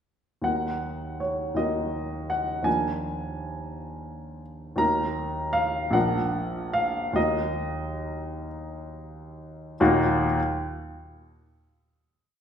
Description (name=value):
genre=classical, romantic character piece for solo piano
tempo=44-58 BPM (dotted quarters)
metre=6/8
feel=rubato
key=Eb minor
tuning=A4 = 440 Hz
part: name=warm baby grand piano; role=solo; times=0.4-10.4 s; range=Bb1 to Bb5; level=-25 LUFS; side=equal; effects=none
room=wet recital hall reverb, RT60 1.6 s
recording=heard from further back in the room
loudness=-24 LUFS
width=side -8 dB against mid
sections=0.5-9.8 A section; 9.8-12.3 final chord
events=slowing down 3.7-9.8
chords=0.5 Ebm; 2.7 Bb7/Eb; 4.8 Ebm; 6.0 Bb; 7.2 Ebm